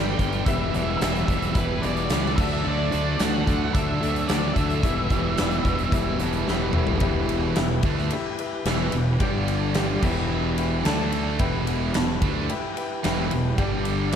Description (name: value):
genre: classic rock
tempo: 110 BPM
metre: 4/4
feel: straight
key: E minor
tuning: A4 = 440 Hz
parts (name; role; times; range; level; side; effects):
- octave-fuzz lead guitar; melody; 0.0-6.2 s; B4 to G5; -30 LUFS; equal; distortion, slapback echo
- bright grand piano; accompaniment; 0.0-14.0 s; D4 to A5; -33 LUFS; left 7 dB; slapback echo
- tonewheel organ; sustained chords; 0.0-14.2 s; A3 to D5; -35 LUFS; left 1 dB; none
- sludgy distorted guitar; riff; 0.0-14.2 s; E2 to E4; -30 LUFS; left 7 dB; overdrive
- tight distorted guitar; riff; 0.0-14.2 s; E2 to D4; -29 LUFS; right 9 dB; distortion
- fuzz fingered electric bass; bass; 0.0-14.2 s; E1 to D2; -28 LUFS; equal; overdrive
- huge arena drum kit; drums; 0.2-14.2 s; crash cymbal, hi-hat, kick drum, ride cymbal, snare drum, toms; -26 LUFS; equal; none
room: moderate lush hall reverb, RT60 1.8 s, studio ambience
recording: big arena sound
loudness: -21 LUFS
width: side -8 dB against mid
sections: 0.0-7.0 A section; 7.0-14.2 B section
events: grand piano fill 5.9-7.0; drum fill 6.5-7.0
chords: 0.5 Em; 2.4 D; 4.8 Em; 9.2 G5; 10.0 Em; 10.9 D5; 11.4 Em; 13.6 G5